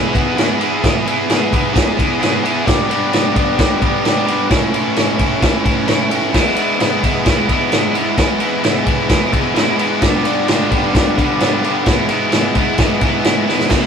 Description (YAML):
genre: garage rock duo or trio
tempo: 130 BPM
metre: 4/4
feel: straight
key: E mixolydian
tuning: A4 = 441 Hz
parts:
  - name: crunchy overdriven guitar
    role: riff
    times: 0.0-13.9 s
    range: E2 to G#4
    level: -16 LUFS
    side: equal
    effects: none
  - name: vintage drum kit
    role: drums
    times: 0.1-13.8 s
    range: crash cymbal, kick drum, ride cymbal, snare drum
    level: -16 LUFS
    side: equal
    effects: none
room: light reverb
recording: rough rehearsal-room recording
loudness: -13 LUFS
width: side -7 dB against mid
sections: 0.0-13.7 A section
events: drum fill 13.5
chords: 0.0 E; 2.7 G; 4.5 A; 6.3 E; 10.0 G; 11.9 E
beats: 0.37 | 0.83 1.29 1.75 2.21 | 2.67 3.13 3.59 4.05 | 4.51 4.96 5.42 5.88 | 6.34 6.80 7.26 7.72 | 8.18 8.64 9.10 9.56 | 10.02 10.48 10.94 11.40 | 11.86 12.32 12.79 13.25 | 13.71